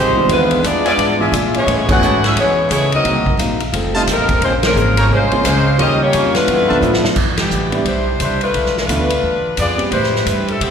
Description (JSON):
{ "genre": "jazz, big band swing", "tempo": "175 BPM", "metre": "4/4", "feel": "swing 62% on 8ths", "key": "C major from 7.2 s", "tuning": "A4 = 441 Hz", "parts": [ { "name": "edgy saxophone section", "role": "melody", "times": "0.0-10.7 s", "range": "E3 to Gb5", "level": "-16 LUFS", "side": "left 2 dB", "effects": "slapback echo" }, { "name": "bright trombone section", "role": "second line", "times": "0.0-7.0 s", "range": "C3 to Gb4", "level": "-22 LUFS", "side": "right 7 dB", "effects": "slapback echo" }, { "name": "picked old ladder-braced acoustic guitar", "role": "accompaniment", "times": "0.0-7.1 s", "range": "G2 to C5", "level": "-24 LUFS", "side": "left 6 dB", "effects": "slapback echo" }, { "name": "upright bass", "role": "bass", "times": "0.0-10.7 s", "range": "Eb1 to B2", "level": "-20 LUFS", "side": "equal", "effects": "none" }, { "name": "warm upright piano", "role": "accompaniment", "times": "0.2-9.9 s", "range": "Eb3 to G#4", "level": "-22 LUFS", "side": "right 2 dB", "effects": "slapback echo" }, { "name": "swinging big-band drum kit", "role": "drums", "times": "0.3-10.7 s", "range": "crash cymbal, hi-hat, kick drum, ride cymbal, snare drum, toms", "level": "-21 LUFS", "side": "equal", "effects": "none" }, { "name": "clear trumpet section", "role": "stabs", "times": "0.8-6.8 s", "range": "F4 to Bb5", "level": "-22 LUFS", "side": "equal", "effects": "slapback echo" } ], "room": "light reverb, small room reverb", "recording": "live gig heard through the venue's PA, recital hall reverb", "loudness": "-13 LUFS", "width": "side -7 dB against mid", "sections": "0.0-7.2 A section; 7.2-10.7 B section", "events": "band accent 1.8, 4.6, 7.3; drum fill 6.8-7.2", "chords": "0.3 E7b9; 1.7 Amaj9; 3.0 Cm7b5; 3.7 F7; 4.4 Bbm9; 5.8 Eb9; 6.5 G13; 7.2 Cmaj9; 8.5 Bm7b5; 9.2 E7b9; 9.9 Am9", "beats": "| 0.29 0.64 0.98 1.32 | 1.67 2.01 2.35 2.70 | 3.04 3.38 3.73 4.07 | 4.42 4.76 5.10 5.45 | 5.79 6.13 6.48 6.82 | 7.16 7.51 7.85 8.20 | 8.54 8.88 9.23 9.57 | 9.92 10.26 10.60" }